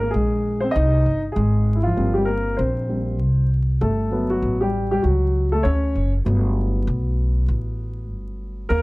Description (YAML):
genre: hip hop, jazz-hop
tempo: 98 BPM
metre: 4/4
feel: swing 64% on 16ths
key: unclear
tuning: A4 = 440 Hz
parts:
  - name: dark grand piano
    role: accompaniment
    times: 0.0-8.8 s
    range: F3 to Eb5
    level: -22 LUFS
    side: equal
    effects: none
  - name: upright bass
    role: bass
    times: 0.0-8.8 s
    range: F#1 to Eb2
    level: -20 LUFS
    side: equal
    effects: none
room: small room reverb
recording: dark, warm production, vinyl crackle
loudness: -18 LUFS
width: side -22 dB against mid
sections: 0.0-8.8 A section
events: grand piano solo 0.0-8.8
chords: 0.0 Abmaj9; 3.8 Gmaj9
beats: 0.13 0.74 | 1.36 1.97 2.58 3.19 | 3.81 4.42 5.03 5.64 | 6.25 6.87 7.48 8.09 | 8.70